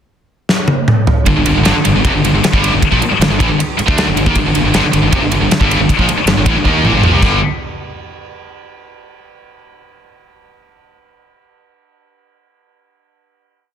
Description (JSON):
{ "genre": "hard rock", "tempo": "156 BPM", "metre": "4/4", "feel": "straight", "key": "G minor", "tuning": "A4 = 445 Hz", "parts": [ { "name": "big rock drum kit", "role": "drums", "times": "0.5-7.3 s", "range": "crash cymbal, kick drum, ride cymbal, snare drum, toms", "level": "-15 LUFS", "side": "equal", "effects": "none" }, { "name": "distorted electric guitar", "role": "riff", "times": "1.3-7.4 s", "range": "F2 to Eb4", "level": "-20 LUFS", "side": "left 1 dB", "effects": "overdrive" }, { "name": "scooped high-gain guitar", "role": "riff", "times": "1.3-7.4 s", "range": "F2 to Eb4", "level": "-16 LUFS", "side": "left 8 dB", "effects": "distortion" }, { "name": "tight distorted guitar", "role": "riff", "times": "1.3-7.4 s", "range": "F2 to Eb4", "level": "-17 LUFS", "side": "right 9 dB", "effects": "distortion" }, { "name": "fuzz fingered electric bass", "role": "bass", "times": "1.3-7.4 s", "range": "F1 to Eb2", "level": "-18 LUFS", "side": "equal", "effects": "overdrive" } ], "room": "light reverb", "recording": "dense, heavily limited modern master", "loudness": "-10 LUFS", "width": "side -8 dB against mid", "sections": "0.0-1.3 pickup bar; 1.3-7.4 riff; 7.4-9.0 final hit", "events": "drum fill 0.5-1.3, 6.7-7.4", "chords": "0.0 N.C.; 1.3 Gm; 7.2 G5; 7.4 N.C." }